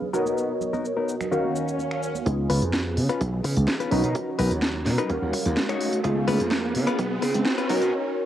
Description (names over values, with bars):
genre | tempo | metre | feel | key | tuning
filtered disco house | 127 BPM | 4/4 | straight | Db mixolydian | A4 = 440 Hz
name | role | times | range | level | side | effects
funky polysynth comp | accompaniment | 0.0-8.3 s | Eb3 to Bb5 | -27 LUFS | right 1 dB | chorus, phaser, sidechain pumping, low-pass filter, cassette tape
congas and tambourine | percussion | 0.0-2.2 s | none | -37 LUFS | right 10 dB | sidechain pumping on perc, low-pass filter on perc
direct-recorded clean electric guitar | riff | 0.1-7.9 s | Cb4 to Db5 | -29 LUFS | left 5 dB | vintage 12-bit sampler grit, sidechain pumping, low-pass filter, cassette tape
house drum kit | drums | 0.1-7.9 s | finger snaps, hi-hat, shaker, snare drum | -29 LUFS | right 1 dB | sidechain pumping on perc, cassette tape, sidechain pumping on hats
swell and riser | sound effects | 1.5-7.9 s | none | -31 LUFS | right 1 dB | none
slap bass | bass | 2.3-7.9 s | Cb2 to Db3 | -25 LUFS | equal | sidechain pumping, low-pass filter
electronic kick drum | drums | 2.3-7.6 s | none | -33 LUFS | right 1 dB | high-pass filter on kick, cassette tape
room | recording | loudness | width
moderate spring reverb, RT60 2.0 s, digital ambience | home recording on cassette, high-pass filter | -22 LUFS | side -11 dB against mid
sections
0.0-2.3 A section; 2.3-8.3 B section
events
swell 1.5-2.3; build-up 2.3-8.3; riser 2.3-7.9; filter sweep 2.3-8.3; break 7.9-8.3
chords
0.1 Cbmaj7; 1.3 Ebm7; 2.3 Db7; 3.9 Cbmaj7; 5.1 Ebm7; 6.0 Db7; 7.7 Cbmaj7